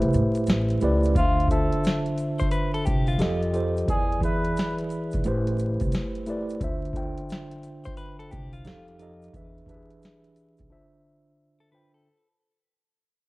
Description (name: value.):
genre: lo-fi hip hop.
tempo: 88 BPM.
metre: 4/4.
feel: swing 65% on 16ths.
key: D dorian.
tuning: A4 = 440 Hz.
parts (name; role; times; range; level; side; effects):
mellow tine electric piano; accompaniment; 0.0-12.1 s; D3 to G5; -27 LUFS; right 1 dB; medium stereo tremolo, low-pass filter.
upright bass; bass; 0.0-10.7 s; A1 to A2; -27 LUFS; equal; none.
booming analog drum machine; drums; 0.0-10.7 s; hi-hat, kick drum, snare drum; -28 LUFS; equal; none.
egg shaker; percussion; 0.1-10.7 s; none; -55 LUFS; left 4 dB; none.
trumpet with bucket mute; melody; 1.2-4.8 s; F4 to B4; -30 LUFS; equal; low-pass filter.
clean electric guitar; second line; 2.4-3.4, 7.9-12.3 s; F4 to C5; -34 LUFS; left 3 dB; low-pass filter.
room: light reverb, studio reverb.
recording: vinyl crackle.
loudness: -22 LUFS.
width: side -20 dB against mid.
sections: 0.0-12.1 A section.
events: break 0.0-1.2, 10.7-12.1; fade-out 0.0-12.1.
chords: 0.0 Am7; 1.2 Dm9; 3.2 F9; 3.9 E7; 5.2 Am7; 6.6 Dm9; 8.7 F9; 9.3 E7; 10.7 Dm7.